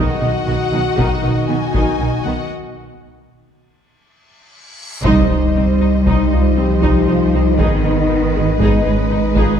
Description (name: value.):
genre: cinematic, hybrid orchestral and electronic film score.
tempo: 118 BPM.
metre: 5/4.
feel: straight.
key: unclear.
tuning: A4 = 440 Hz.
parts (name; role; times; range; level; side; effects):
warm symphonic violin section; melody; 0.0-2.5 s; F#5 to Ab5; -25 LUFS; left 7 dB; none.
warm symphonic violin section; second line; 0.0-9.6 s; F#4 to D#5; -27 LUFS; left 3 dB; none.
clear symphonic viola section; accompaniment; 0.0-9.6 s; D#3 to Ab4; -23 LUFS; right 1 dB; none.
chorused pulse-width pad; sustained chords; 0.0-9.6 s; D#3 to D#5; -20 LUFS; left 2 dB; none.
clear symphonic double bass section; bass; 0.0-9.4 s; Ab1 to C2; -22 LUFS; right 2 dB; none.
warm symphonic cello section; bass; 0.0-9.6 s; B2 to Ab3; -20 LUFS; right 4 dB; none.
taiko ensemble; drums; 1.0-9.6 s; none; -22 LUFS; left 1 dB; none.
reverse cymbal and impact; sound effects; 4.7-7.6 s; none; -26 LUFS; equal; none.
warm sub bass; bass; 5.1-9.6 s; Ab1 to C2; -19 LUFS; equal; none.
warm French horn section; sustained chords; 6.1-9.6 s; Cb4 to G4; -24 LUFS; left 4 dB; none.
room: moderate concert hall reverb, RT60 1.8 s.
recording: dark, warm production.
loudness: -13 LUFS.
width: side -8 dB against mid.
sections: 0.0-5.0 A section; 5.0-9.6 A section.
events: break 2.5-5.0; reverse cymbal 4.7-5.0; band accent 5.0-5.6; impact 5.0-7.6.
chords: 0.0 B; 2.5 N.C.; 5.0 Cm; 7.6 Abm.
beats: 0.47 0.98 1.49 1.99 | 2.50 3.01 3.52 4.03 4.54 | 5.04 5.55 6.06 6.57 7.08 | 7.59 8.10 8.60 9.11.